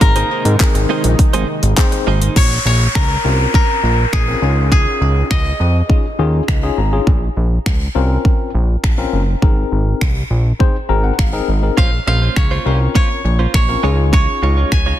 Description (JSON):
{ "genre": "dance-pop", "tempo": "102 BPM", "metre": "4/4", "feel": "straight", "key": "Bb minor", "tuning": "A4 = 440 Hz", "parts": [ { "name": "koto", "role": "melody", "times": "0.0-6.9, 11.8-15.0 s", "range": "Ab4 to Ab5", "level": "-20 LUFS", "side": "equal", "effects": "ping-pong delay" }, { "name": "tine electric piano", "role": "accompaniment", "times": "0.0-14.8 s", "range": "C4 to Bb5", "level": "-22 LUFS", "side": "left 6 dB", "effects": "auto-pan" }, { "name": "warm analog pad", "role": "sustained chords", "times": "0.0-2.3 s", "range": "C3 to Eb4", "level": "-24 LUFS", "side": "right 2 dB", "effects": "chorus, sidechain pumping" }, { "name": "direct-recorded clean electric guitar", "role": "riff", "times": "0.0-2.4, 11.8-15.0 s", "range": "Ab3 to Db5", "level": "-23 LUFS", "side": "right 8 dB", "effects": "analog chorus" }, { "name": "fat analog bass", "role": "bass", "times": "0.0-14.9 s", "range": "Gb1 to Ab2", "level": "-16 LUFS", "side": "equal", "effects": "sidechain pumping" }, { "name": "pop drum kit", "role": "drums", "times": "0.0-14.9 s", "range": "crash cymbal, finger snaps, handclaps, hi-hat, kick drum", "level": "-15 LUFS", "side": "equal", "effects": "soft clipping on snare" }, { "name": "downlifter", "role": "sound effects", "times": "2.4-7.1 s", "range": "none", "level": "-24 LUFS", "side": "left 1 dB", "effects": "none" } ], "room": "digital ambience", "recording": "dense, heavily limited modern master", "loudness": "-12 LUFS", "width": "side -12 dB against mid", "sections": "0.0-2.4 A section; 2.4-15.0 B section", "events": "tine electric piano fill 6.2-7.1, 10.6-11.8", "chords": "0.0 Abadd9; 2.4 Bbmadd9; 4.4 Dbadd9; 7.1 Bbmadd9; 9.4 Abadd9; 11.8 Bbmadd9; 13.8 Dbadd9" }